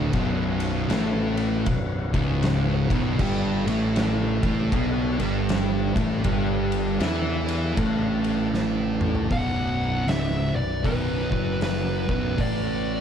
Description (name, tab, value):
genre	stoner and doom metal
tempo	78 BPM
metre	4/4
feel	swing 62% on 8ths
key	unclear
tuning	A4 = 440 Hz
part	tonewheel organ	sustained chords	0.0-13.0 s	G3 to D5	-38 LUFS	equal	none
part	thick fuzz guitar	riff	0.0-13.0 s	B1 to E4	-28 LUFS	left 7 dB	distortion
part	thick fuzz guitar	riff	0.0-13.0 s	B1 to E4	-28 LUFS	right 8 dB	distortion
part	thick fuzz guitar	riff	0.0-9.3 s	B1 to E4	-31 LUFS	equal	distortion
part	fuzz picked electric bass	bass	0.0-13.0 s	B0 to E2	-28 LUFS	equal	overdrive
part	oversized low-tuned drum kit	drums	0.1-12.6 s	crash cymbal, hi-hat, kick drum, ride cymbal, snare drum, toms	-28 LUFS	left 1 dB	none
part	fuzz lead guitar	melody	9.3-13.0 s	B4 to F#5	-29 LUFS	equal	distortion, digital delay
room	small room reverb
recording	dark, warm production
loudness	-22 LUFS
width	side -8 dB against mid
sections	0.0-9.3 A section; 9.3-13.0 B section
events	drum fill 8.5-9.3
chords	0.0 Bm; 3.2 G5; 9.3 Bm